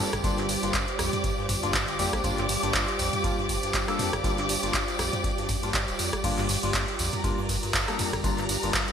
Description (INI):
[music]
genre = acid house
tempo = 120 BPM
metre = 4/4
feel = swing 56% on 16ths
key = G minor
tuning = A4 = 439 Hz
[part]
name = warbly tape-like pad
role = sustained chords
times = 0.0-8.9 s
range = G3 to C5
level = -34 LUFS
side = right 1 dB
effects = chorus, built-in reverb, sidechain pumping
[part]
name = liquid acid bass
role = riff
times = 0.0-8.9 s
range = F2 to G2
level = -34 LUFS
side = equal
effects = phaser, tube saturation, analog chorus, ping-pong delay
[part]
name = percussive organ stab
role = stabs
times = 0.0-8.8 s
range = G3 to A4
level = -34 LUFS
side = left 3 dB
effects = lush chorus, ping-pong delay
[part]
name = warm studio string section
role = texture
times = 0.0-8.9 s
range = G4 to D6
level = -31 LUFS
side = equal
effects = sidechain pumping
[part]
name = round analog bass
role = bass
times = 0.1-8.7 s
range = D1 to Bb1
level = -36 LUFS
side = equal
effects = sidechain pumping
[part]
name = electro analog drum machine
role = drums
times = 0.1-8.9 s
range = crash cymbal, handclaps, hi-hat, ride cymbal, rim click, toms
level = -29 LUFS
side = equal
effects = gated reverb
[part]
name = electronic kick drum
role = drums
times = 0.1-8.9 s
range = none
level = -32 LUFS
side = equal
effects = overdrive
[part]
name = tambourine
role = percussion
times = 0.1-8.9 s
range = none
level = -36 LUFS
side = right 2 dB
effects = none
[sound]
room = moderate lush hall reverb, RT60 1.8 s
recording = bright 1980s-style digital production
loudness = -24 LUFS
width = side -8 dB against mid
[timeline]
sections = 0.0-8.9 A section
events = none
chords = 0.0 Gm7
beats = | 0.24 0.74 1.24 1.74 | 2.24 2.74 3.24 3.74 | 4.24 4.74 5.24 5.74 | 6.24 6.74 7.24 7.74 | 8.24 8.74